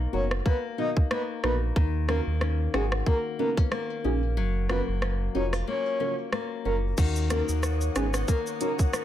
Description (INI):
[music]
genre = dancehall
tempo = 92 BPM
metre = 4/4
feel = swing 56% on 16ths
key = Eb minor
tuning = A4 = 437 Hz
[part]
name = flamenco guitar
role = arpeggios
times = 0.0-9.0 s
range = Eb3 to Gb4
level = -33 LUFS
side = left 8 dB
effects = tape echo
[part]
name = sub bass with octave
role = bass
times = 0.0-8.2 s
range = F1 to Eb2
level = -27 LUFS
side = right 1 dB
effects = none
[part]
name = breathy flute-like synth lead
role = melody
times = 0.1-8.7 s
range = Ab4 to D#5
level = -32 LUFS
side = equal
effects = chorus, tape echo
[part]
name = deep mellow chord stab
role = accompaniment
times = 0.1-8.8 s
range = B3 to A#4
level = -32 LUFS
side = right 1 dB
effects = chorus, phaser
[part]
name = island pop drum kit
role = drums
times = 0.3-9.0 s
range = crash cymbal, hi-hat, kick drum, rim click, shaker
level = -28 LUFS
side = right 1 dB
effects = none
[part]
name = glassy FM pad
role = sustained chords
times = 7.4-9.0 s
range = Db5 to Eb6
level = -38 LUFS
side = right 1 dB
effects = ensemble chorus, built-in reverb, sidechain pumping
[sound]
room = digital ambience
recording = none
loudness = -24 LUFS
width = side -11 dB against mid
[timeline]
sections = 0.0-7.0 A section; 7.0-9.0 B section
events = kick muted 4.4-7.0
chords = 0.0 Bmaj7; 1.8 Ebm7; 4.4 Gbmaj7; 7.0 Ebm7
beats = 0.46 1.11 | 1.76 2.41 3.06 3.72 | 4.37 5.02 5.67 6.33 | 6.98 7.63 8.28 8.93